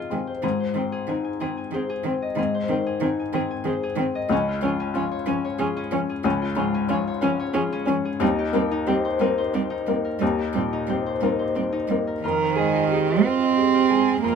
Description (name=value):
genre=neoclassical piano and strings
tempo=61 BPM (dotted quarters)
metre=6/8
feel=rubato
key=F minor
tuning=A4 = 439 Hz
part: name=felt-muted upright piano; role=accompaniment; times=0.0-14.4 s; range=Db2 to C5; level=-26 LUFS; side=left 5 dB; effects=none
part: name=concert harp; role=arpeggios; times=0.0-14.4 s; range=Db4 to Ab5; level=-28 LUFS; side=left 3 dB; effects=none
part: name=warm cello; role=second line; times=0.1-14.4 s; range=Eb3 to C4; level=-24 LUFS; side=right 8 dB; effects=none
part: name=dark viola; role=accompaniment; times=0.1-14.4 s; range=Ab3 to Bb4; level=-28 LUFS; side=right 3 dB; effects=none
room=little or no reverb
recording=minimal, uncompressed stereo recording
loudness=-21 LUFS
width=side -6 dB against mid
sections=0.0-12.2 A section; 12.2-14.4 B section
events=none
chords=0.4 Ab; 4.3 Db; 8.2 Eb6; 12.2 Fm7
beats=| 0.43 1.40 | 2.37 3.34 | 4.31 5.28 | 6.25 7.23 | 8.21 9.21 | 10.21 11.22 | 12.23 13.24 | 14.23